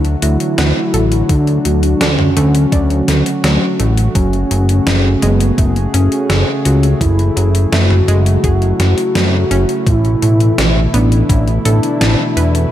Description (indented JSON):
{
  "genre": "synthwave",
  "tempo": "84 BPM",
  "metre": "4/4",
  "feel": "straight",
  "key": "unclear",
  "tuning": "A4 = 440 Hz",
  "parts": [
    { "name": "soft octave-layered synth lead", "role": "melody", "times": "0.0-12.6 s", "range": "B3 to F#4", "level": "-18 LUFS", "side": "left 1 dB", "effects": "chorus, ping-pong delay" },
    { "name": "warm analog pad", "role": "sustained chords", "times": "0.0-12.7 s", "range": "B2 to G#4", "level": "-20 LUFS", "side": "equal", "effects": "chorus" },
    { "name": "analog pluck", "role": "arpeggios", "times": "0.0-12.6 s", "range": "F#3 to A5", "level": "-24 LUFS", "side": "right 1 dB", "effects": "chorus, tape echo" },
    { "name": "fat analog bass", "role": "bass", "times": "0.0-12.7 s", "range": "F#1 to F#2", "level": "-13 LUFS", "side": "equal", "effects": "none" },
    { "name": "gated 80s digital drum machine", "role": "drums", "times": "0.0-12.7 s", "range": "hi-hat, snare drum, toms", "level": "-19 LUFS", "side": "equal", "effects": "gated reverb, gated reverb snare, overdrive" },
    { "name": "electronic kick drum", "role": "drums", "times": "1.3-11.4 s", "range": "none", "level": "-15 LUFS", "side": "equal", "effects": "overdrive" }
  ],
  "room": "light reverb",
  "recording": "none",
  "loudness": "-11 LUFS",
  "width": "side -12 dB against mid",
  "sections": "0.0-12.7 A section",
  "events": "none",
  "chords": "0.0 D; 4.2 F#madd9; 9.9 Asus2"
}